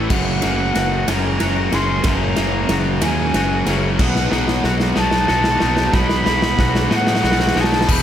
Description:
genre	post-rock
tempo	62 BPM (dotted quarters)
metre	6/8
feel	straight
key	unclear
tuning	A4 = 440 Hz
part	soft additive organ-like pad	sustained chords	0.0-7.8 s	A3 to B5	-33 LUFS	left 1 dB	none
part	twangy electric guitar	arpeggios	0.0-7.9 s	F#2 to F#4	-27 LUFS	left 3 dB	ensemble chorus, slapback echo
part	distorted electric guitar	riff	0.0-8.0 s	F#2 to G4	-21 LUFS	left 1 dB	distortion
part	fuzz fingered electric bass	bass	0.0-8.0 s	E1 to A2	-22 LUFS	equal	overdrive
part	silver concert flute	melody	0.1-8.0 s	F#5 to C6	-22 LUFS	right 1 dB	slapback echo
part	big rock drum kit	drums	0.1-8.0 s	crash cymbal, kick drum, ride cymbal, snare drum	-20 LUFS	equal	none
room	light reverb, small room ambience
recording	none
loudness	-15 LUFS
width	side -10 dB against mid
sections	0.0-7.9 A section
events	build-up 0.0-7.9; drum fill 0.0-7.9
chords	0.1 F#; 4.0 B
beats	| 0.12 1.09 | 2.06 3.03 | 4.00 4.97 | 5.95 6.92 | 7.89

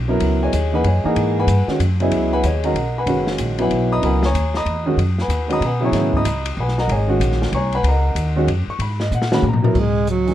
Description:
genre	modal jazz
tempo	189 BPM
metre	3/4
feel	swing 63% on 8ths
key	C# dorian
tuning	A4 = 435 Hz
part	upright bass	bass	0.0-10.3 s	F#1 to B2	-20 LUFS	equal	none
part	warm grand piano	accompaniment	0.1-10.3 s	C#3 to D#6	-19 LUFS	equal	none
part	open jazz drum kit	drums	0.2-10.3 s	crash cymbal, hi-hat, kick drum, ride cymbal, snare drum, toms	-26 LUFS	left 3 dB	none
part	warm tenor saxophone	melody	9.7-10.3 s	F#3 to G#3	-18 LUFS	right 4 dB	plate reverb
room	light reverb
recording	dark, warm production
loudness	-16 LUFS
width	side -12 dB against mid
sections	0.0-9.8 A section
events	drum fill 9.1-9.8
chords	0.0 C#13sus4; 9.8 C#sus4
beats	| 0.21 0.53 0.84 | 1.16 1.48 1.80 | 2.12 2.44 2.75 | 3.07 3.39 3.71 | 4.03 4.34 4.66 | 4.98 5.30 5.62 | 5.93 6.25 6.57 | 6.89 7.21 7.53 | 7.84 8.16 8.48 | 8.80 9.12 9.44 | 9.75 10.07

